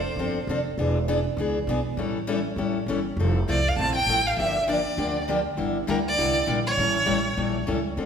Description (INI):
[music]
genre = acoustic string swing (jazz manouche)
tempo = 200 BPM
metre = 4/4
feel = swing 57% on 8ths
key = unclear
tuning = A4 = 445 Hz
[part]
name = warm violin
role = melody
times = 0.0-0.5, 3.5-7.6 s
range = Bb4 to A5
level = -25 LUFS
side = right 1 dB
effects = none
[part]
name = upright bass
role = bass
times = 0.0-8.1 s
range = E1 to D2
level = -29 LUFS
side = right 1 dB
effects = none
[part]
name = picked steel-string acoustic guitar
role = accompaniment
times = 0.2-8.1 s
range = D3 to A4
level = -26 LUFS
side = left 2 dB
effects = none
[sound]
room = wet recital hall reverb, RT60 1.6 s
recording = recorded in a church or concert hall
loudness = -22 LUFS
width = side -7 dB against mid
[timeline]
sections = 0.0-8.0 A section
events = none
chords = 0.0 Dm7; 0.8 E7; 2.0 A7; 3.2 Fmaj7; 4.4 Gm7; 5.6 Em7b5/G; 6.8 A7